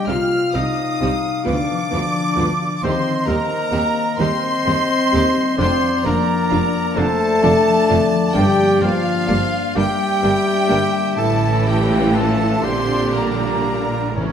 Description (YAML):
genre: classical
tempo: 38-45 BPM (dotted quarters)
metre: 6/8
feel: rubato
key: unclear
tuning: A4 = 440 Hz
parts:
  - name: rich studio violin section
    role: melody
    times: 0.0-14.3 s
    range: C#5 to F6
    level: -24 LUFS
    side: left 1 dB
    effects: none
  - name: flute section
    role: second line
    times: 0.0-14.3 s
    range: C#5 to F6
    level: -27 LUFS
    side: right 1 dB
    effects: none
  - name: mellow clarinet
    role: second line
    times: 0.0-14.3 s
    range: C5 to F5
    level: -27 LUFS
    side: equal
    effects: none
  - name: warm oboe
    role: second line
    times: 0.0-14.3 s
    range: C#4 to F5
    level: -27 LUFS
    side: right 2 dB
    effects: none
  - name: dark French horn section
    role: sustained chords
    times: 0.0-14.3 s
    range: C#3 to F4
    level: -21 LUFS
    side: left 2 dB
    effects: none
  - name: concert harp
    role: arpeggios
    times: 0.0-14.3 s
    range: F2 to D6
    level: -26 LUFS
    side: left 5 dB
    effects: none
  - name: rich chamber violin section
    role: second line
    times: 0.1-14.3 s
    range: C#4 to B4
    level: -31 LUFS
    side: left 2 dB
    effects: none
  - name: rich studio viola section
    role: accompaniment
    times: 0.1-14.3 s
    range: D3 to D4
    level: -25 LUFS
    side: right 2 dB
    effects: none
  - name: warm studio cello section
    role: bass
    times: 0.1-14.3 s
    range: D2 to C3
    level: -25 LUFS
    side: right 3 dB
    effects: none
  - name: warm studio double bass section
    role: bass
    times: 0.1-14.3 s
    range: F1 to Eb2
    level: -26 LUFS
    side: right 4 dB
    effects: none
  - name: timpani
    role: percussion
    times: 14.2-14.3 s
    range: A2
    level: -23 LUFS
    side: equal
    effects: none
room: wet scoring stage reverb, RT60 1.6 s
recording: none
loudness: -15 LUFS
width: side -8 dB against mid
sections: 0.0-14.3 A section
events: none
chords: 0.1 Cm; 1.5 Bdim/D; 2.8 Cm/Eb; 5.6 Dm/F; 8.4 Gm; 11.2 A; 12.6 Gm/Bb